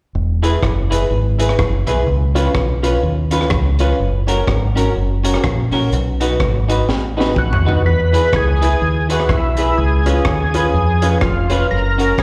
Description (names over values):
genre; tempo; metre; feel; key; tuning
ska; 125 BPM; 4/4; swing 60% on 8ths; E major; A4 = 439 Hz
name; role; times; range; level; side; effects
deep dub fingered electric bass; bass; 0.1-12.2 s; E1 to E#2; -20 LUFS; equal; none
semi-hollow electric guitar; accompaniment; 0.4-12.1 s; C#4 to B4; -27 LUFS; equal; analog chorus, slapback echo
warm upright piano; stabs; 0.4-12.2 s; C#4 to B4; -23 LUFS; equal; slapback echo
crunchy breakbeat drum kit; drums; 0.4-12.2 s; hi-hat, kick drum, rim click, snare drum, toms; -22 LUFS; equal; none
overdriven tonewheel organ; melody; 7.4-12.2 s; E4 to B4; -22 LUFS; equal; chorus vibrato, slow rotary speaker, slapback echo
room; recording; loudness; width
light reverb, studio ambience; live gig heard through the venue's PA, recital hall reverb; -16 LUFS; mono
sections
0.1-7.8 A section; 7.8-12.2 B section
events
drum fill 6.9-7.8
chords
0.1 E; 2.1 C#7; 4.0 F#; 5.9 B; 7.8 E; 9.8 C#7; 11.7 F#